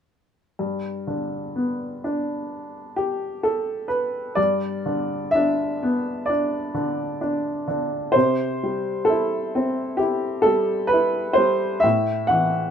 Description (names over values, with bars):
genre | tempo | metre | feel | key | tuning
classical, lyrical solo piano | 64 BPM | 4/4 | uneven beats, rubato | G major | A4 = 439 Hz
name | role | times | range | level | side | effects
warm upright piano | solo | 0.6-12.7 s | G2 to F#5 | -21 LUFS | equal | none
room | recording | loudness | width
moderate studio reverb, RT60 0.6 s | minimal, uncompressed stereo recording | -21 LUFS | side -8 dB against mid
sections
0.6-4.4 A section; 4.4-12.7 B section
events
none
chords
0.6 G; 8.2 C; 11.8 A5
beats
| 0.60 1.57 2.52 3.44 | 4.38 5.35 6.29 7.21 | 8.15 9.10 10.01 10.92 | 11.84